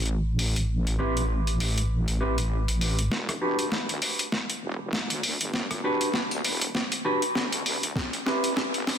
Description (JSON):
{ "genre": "glitch hop", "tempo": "99 BPM", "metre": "4/4", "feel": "swing 57% on 16ths", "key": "E minor", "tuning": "A4 = 440 Hz", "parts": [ { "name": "wobble bass", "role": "bass", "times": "0.0-8.8 s", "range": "E1 to D2", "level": "-28 LUFS", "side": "equal", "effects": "chorus, high-pass filter" }, { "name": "boom bap sampler-style drum kit", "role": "drums", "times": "0.0-9.0 s", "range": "hi-hat, rim click, snare drum", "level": "-28 LUFS", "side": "equal", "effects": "overdrive" }, { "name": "mellow electric guitar", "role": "stabs", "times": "1.0-8.5 s", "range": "C4 to B4", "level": "-29 LUFS", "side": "equal", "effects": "sidechain pumping, low-pass filter, dub echo" }, { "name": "electronic kick drum", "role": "drums", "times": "8.0-8.1 s", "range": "none", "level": "-31 LUFS", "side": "equal", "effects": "overdrive" } ], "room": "moderate lush hall reverb, RT60 1.9 s", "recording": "dense, heavily limited modern master, high-pass filter", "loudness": "-24 LUFS", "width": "side -8 dB against mid", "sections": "0.0-3.1 A section; 3.1-9.0 B section", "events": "build-up 3.1-9.0; drum fill 3.1-9.0; filter sweep on clean electric guitar 3.1-9.0", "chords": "0.0 Am; 3.1 Em9; 8.0 Am9", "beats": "0.09 | 0.69 1.30 1.90 2.51 | 3.12 3.72 4.33 4.93 | 5.54 6.15 6.75 7.36 | 7.96 8.57" }